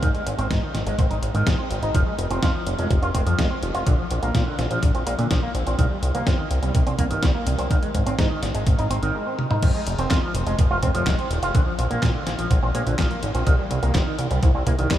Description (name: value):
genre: italo disco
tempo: 125 BPM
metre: 4/4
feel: straight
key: F dorian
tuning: A4 = 440 Hz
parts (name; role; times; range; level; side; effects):
- electric guitar with an envelope filter; arpeggios; 0.0-15.0 s; D3 to F4; -26 LUFS; right 1 dB; lush chorus, analog delay
- chorused synth bass; bass; 0.0-15.0 s; Eb1 to Bb2; -24 LUFS; equal; tube saturation, analog delay
- detuned 8-bit digital drum machine; drums; 0.0-15.0 s; crash cymbal, handclaps, hi-hat, snare drum, toms; -29 LUFS; left 1 dB; none
- electronic kick drum; drums; 0.0-15.0 s; none; -22 LUFS; equal; none
room: moderate huge ambient reverb, RT60 8.6 s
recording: dreamy mix soaked in reverb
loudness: -20 LUFS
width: side -12 dB against mid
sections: 0.0-9.6 A section; 9.6-15.0 B section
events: break 9.1-9.6; drum fill 9.4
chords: 0.0 Ab; 1.9 F5; 3.9 N.C.; 5.8 C7(no3); 7.7 Ab; 9.6 F5; 11.5 N.C.; 13.5 Cm